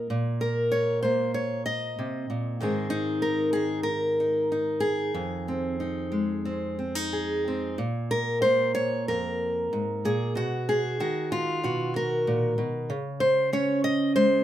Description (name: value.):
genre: folk, solo fingerstyle acoustic guitar.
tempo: 94 BPM.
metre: 4/4.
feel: rubato.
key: Bb minor.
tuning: A4 = 440 Hz.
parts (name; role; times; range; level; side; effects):
fingerpicked steel-string acoustic guitar; solo; 0.0-14.4 s; F2 to Eb5; -24 LUFS; equal; none.
room: moderate small room reverb, RT60 0.5 s.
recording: none.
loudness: -24 LUFS.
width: side -12 dB against mid.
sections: 0.0-7.8 A section; 7.8-14.4 B section.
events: none.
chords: 0.0 Bbsus2; 2.6 Ab; 5.2 Fm7; 7.8 Bb5; 10.4 B; 12.9 Db5.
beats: | 0.09 0.72 1.35 1.98 | 2.61 3.23 3.87 4.51 | 5.16 5.80 6.45 7.11 | 7.78 8.43 9.07 9.72 | 10.36 11.00 11.63 12.27 | 12.90 13.53 14.16.